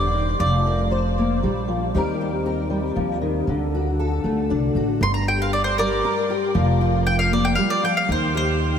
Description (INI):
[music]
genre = acoustic folk duo or small band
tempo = 117 BPM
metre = 3/4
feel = straight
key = G minor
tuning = A4 = 440 Hz
[part]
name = mandolin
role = melody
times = 0.0-1.6, 5.0-8.8 s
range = Bb4 to C6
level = -23 LUFS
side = right 1 dB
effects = ping-pong delay
[part]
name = fingerpicked steel-string acoustic guitar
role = accompaniment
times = 0.0-8.8 s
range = G2 to C5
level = -23 LUFS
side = left 2 dB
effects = ensemble chorus
[part]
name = upright bass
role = bass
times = 0.0-8.8 s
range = E1 to Eb2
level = -23 LUFS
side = right 1 dB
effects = none
[sound]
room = moderate huge ambient reverb, RT60 6.7 s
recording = dreamy mix soaked in reverb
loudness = -19 LUFS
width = side -8 dB against mid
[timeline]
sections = 0.0-5.0 A section; 5.0-8.8 B section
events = mandolin solo 5.0-8.8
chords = 0.4 Fsus4; 1.9 Cm7/Eb; 3.5 D; 5.0 Gm; 6.6 Fsus4; 8.1 Cm7/Eb